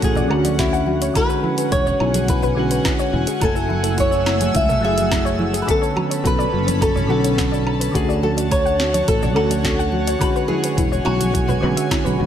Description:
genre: sunset chillout.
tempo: 106 BPM.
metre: 4/4.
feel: straight.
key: unclear.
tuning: A4 = 440 Hz.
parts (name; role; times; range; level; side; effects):
flamenco guitar; melody; 0.0-12.1 s; E4 to E5; -23 LUFS; equal; digital delay.
soft electric-piano-like synth keys; accompaniment; 0.0-12.3 s; D3 to G#5; -24 LUFS; moving between left 4 dB and right 4 dB; chorus, auto-pan.
airy breathy pad; sustained chords; 0.0-12.3 s; A3 to E6; -26 LUFS; left 1 dB; chorus.
soft round pluck; arpeggios; 0.0-12.3 s; E4 to F#5; -26 LUFS; left 3 dB; wide subtle chorus, digital delay.
sustaining fretless electric bass; bass; 0.0-12.3 s; E1 to D2; -22 LUFS; equal; tube saturation, ensemble chorus.
electronic kick drum; drums; 0.0-12.0 s; none; -23 LUFS; equal; none.
smooth R&B drum kit; drums; 0.0-12.2 s; hi-hat, shaker, snare drum, woodblock; -26 LUFS; equal; overdrive.
congas; percussion; 0.2-11.6 s; none; -29 LUFS; right 4 dB; none.
room: moderate digital room reverb, RT60 1.1 s, digital ambience.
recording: none.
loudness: -16 LUFS.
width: side -9 dB against mid.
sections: 0.0-12.3 A section.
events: none.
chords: 0.0 Dmaj7; 1.2 E13; 3.4 F#m9; 5.7 Bm9; 7.9 Dmaj7; 10.2 E13.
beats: 0.02 0.59 | 1.15 1.72 2.29 2.85 | 3.42 3.98 4.55 5.12 | 5.68 6.25 6.81 7.38 | 7.95 8.51 9.08 9.64 | 10.21 10.78 11.34 11.91.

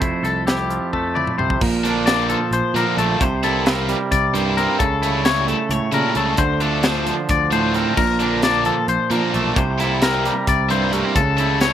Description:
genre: math rock and midwest emo.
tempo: 264 BPM (eighths).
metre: 7/8.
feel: straight.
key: unclear.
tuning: A4 = 440 Hz.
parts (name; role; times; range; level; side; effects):
twangy electric guitar; accompaniment; 0.0-11.7 s; F2 to A4; -22 LUFS; right 5 dB; slapback echo.
twangy electric guitar; arpeggios; 0.0-11.7 s; G4 to D5; -22 LUFS; left 7 dB; slapback echo.
growling fingered electric bass; bass; 0.0-11.7 s; F1 to C#3; -25 LUFS; equal; overdrive.
crisp fusion drum kit; drums; 0.0-11.7 s; crash cymbal, hi-hat, kick drum, snare drum, toms; -22 LUFS; equal; none.
cranked stack guitar; riff; 1.8-11.7 s; C3 to E4; -22 LUFS; right 1 dB; overdrive.
room: little or no reverb.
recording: recorded outdoors, with no room sound.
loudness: -16 LUFS.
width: side -10 dB against mid.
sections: 0.0-1.6 A section; 1.6-11.7 B section.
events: drum fill 0.9-1.6.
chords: 0.0 Fmaj9; 1.6 Bbmaj7; 3.2 C7; 4.8 A7/C#; 6.4 Dm7; 8.0 Bbmaj7; 9.6 C7; 11.2 A7/C#.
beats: | 0.02 0.25 0.48 0.70 0.93 1.16 1.39 | 1.61 1.84 2.07 2.30 2.52 2.75 2.98 | 3.21 3.43 3.66 3.89 4.12 4.34 4.57 | 4.80 5.02 5.25 5.48 5.71 5.93 6.16 | 6.39 6.61 6.84 7.07 7.29 7.52 7.75 | 7.98 8.20 8.43 8.66 8.88 9.11 9.34 | 9.57 9.79 10.02 10.25 10.48 10.70 10.93 | 11.16 11.39 11.62.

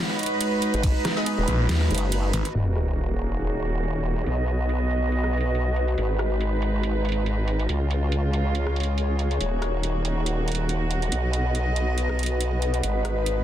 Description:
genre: heavy wobble dubstep.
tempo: 140 BPM.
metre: 4/4.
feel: swing 55% on 16ths, half-time.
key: Eb minor.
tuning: A4 = 443 Hz.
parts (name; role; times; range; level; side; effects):
rich chamber string section; sustained chords; 0.0-13.4 s; Db3 to D#5; -29 LUFS; right 3 dB; sidechain pumping, low-pass filter.
warbly tape-like pad; texture; 0.0-13.4 s; Gb4 to Gb5; -31 LUFS; left 2 dB; chorus, built-in reverb, sidechain pumping.
dubstep drum kit; drums; 0.2-13.4 s; hi-hat, ride cymbal, rim click, snare drum; -31 LUFS; right 1 dB; low-pass filter on hats, low-pass filter on cymbals, low-pass filter on snare, low-pass filter on room.
formant-sweep wobble bass; bass; 0.7-13.4 s; Eb1 to Db2; -25 LUFS; equal; chorus, overdrive.
electronic kick drum; drums; 0.8-0.9 s; none; -22 LUFS; equal; overdrive.
orchestra-hit-like synth stab; stabs; 1.2-1.3 s; Cb4 to Eb5; -33 LUFS; left 2 dB; built-in reverb, ping-pong delay.
snarling distorted saw bass; bass; 1.5-2.4 s; Ab1 to Eb2; -22 LUFS; equal; distortion, overdrive.
sub drop; sound effects; 2.5-4.3 s; none; -27 LUFS; left 1 dB; none.
room: light reverb.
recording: dense, heavily limited modern master.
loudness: -22 LUFS.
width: side -11 dB against mid.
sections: 0.0-2.5 A section; 2.5-13.4 B section.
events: drop 0.0-2.5; break 2.1-2.5; impact 2.5-4.3; filter sweep on drum 2.5-13.4; filter sweep on string section 2.5-13.4.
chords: 0.0 Abm; 2.5 Ebm; 4.3 B; 6.0 Abm; 7.7 Db; 9.4 Ebm; 11.1 B; 12.8 Abm.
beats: 0.41 | 0.83 1.26 1.69 2.12 | 2.55 2.98 3.41 3.83 | 4.26 4.69 5.12 5.55 | 5.98 6.41 6.83 7.26 | 7.69 8.12 8.55 8.98 | 9.41 9.83 10.26 10.69 | 11.12 11.55 11.98 12.41 | 12.83 13.26.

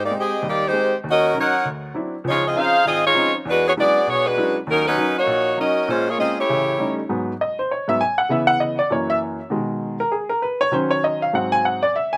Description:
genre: jazz.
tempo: 198 BPM.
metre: 4/4.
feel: swing 61% on 8ths.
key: unclear.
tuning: A4 = 438 Hz.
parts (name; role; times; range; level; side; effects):
clear saxophone section; melody; 0.0-6.9 s; F#3 to F#5; -20 LUFS; equal; slapback echo.
clear baby grand piano; accompaniment; 0.0-12.2 s; G#1 to G#5; -24 LUFS; equal; none.
room: little or no reverb.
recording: recorded outdoors, with no room sound.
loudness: -20 LUFS.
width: mono.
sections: 0.0-7.1 A section; 7.1-12.2 B section.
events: grand piano solo 7.1-12.2.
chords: 0.0 G#maj7; 1.0 D#m7; 1.6 D9; 2.2 C#maj9; 3.5 E13; 4.7 D#m7; 5.9 A#m7; 6.5 A7#11; 7.1 G#m7; 8.3 C#m7; 8.9 F#7; 9.5 B6; 10.7 D#m7; 11.3 G#7#11.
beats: 0.12 0.42 0.73 | 1.03 1.33 1.64 1.94 | 2.24 2.55 2.85 3.15 | 3.46 3.76 4.07 4.37 | 4.67 4.97 5.28 5.58 | 5.88 6.19 6.49 6.79 | 7.10 7.40 7.70 8.01 | 8.31 8.61 8.92 9.22 | 9.52 9.83 10.13 10.43 | 10.74 11.04 11.34 11.65 | 11.95.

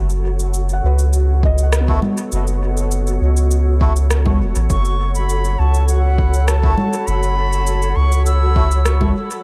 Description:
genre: ambient dub.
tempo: 101 BPM.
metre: 4/4.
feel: straight.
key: F# dorian.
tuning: A4 = 440 Hz.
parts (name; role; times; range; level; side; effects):
granular cloud pad; sustained chords; 0.0-9.4 s; F#4 to F#5; -28 LUFS; equal; built-in reverb.
felt-muted upright piano; arpeggios; 0.0-9.4 s; B3 to F#5; -31 LUFS; equal; dub echo.
soft dub sub bass; bass; 0.0-9.1 s; E1 to C#2; -18 LUFS; equal; none.
electronic cabasa, rim click and congas; drums; 0.1-9.4 s; none; -26 LUFS; equal; overdrive, dub echo.
electronic kick drum; drums; 1.4-9.1 s; none; -22 LUFS; equal; none.
melodica; stabs; 1.9-8.7 s; A3 to F#4; -33 LUFS; equal; dub echo.
reedy concert flute; melody; 4.7-9.1 s; F#5 to E6; -25 LUFS; equal; dub echo.
room: digital ambience.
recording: none.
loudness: -16 LUFS.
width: mono.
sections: 0.0-9.4 A section.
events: none.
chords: 0.0 F#m.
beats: 0.54 1.13 1.73 | 2.32 2.92 3.51 4.10 | 4.70 5.29 5.89 6.48 | 7.07 7.67 8.26 8.86.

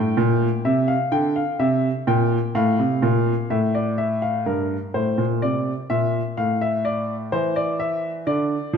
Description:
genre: classical, baroque-style two-part invention for grand piano.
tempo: 63 BPM.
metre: 4/4.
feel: straight.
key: unclear.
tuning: A4 = 441 Hz.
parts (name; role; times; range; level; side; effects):
warm baby grand piano; solo; 0.0-8.8 s; G2 to G5; -19 LUFS; equal; none.
room: wet recital hall reverb, RT60 1.8 s.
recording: dark, warm production.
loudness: -19 LUFS.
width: side -6 dB against mid.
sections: 0.0-4.5 A section; 4.5-8.8 B section.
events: none.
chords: 0.0 N.C.; 0.6 C7; 2.5 F/A; 4.5 Edim/G; 6.4 A5; 8.3 N.C..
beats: | 0.65 1.60 2.55 3.50 | 4.46 5.42 6.37 7.32 | 8.26.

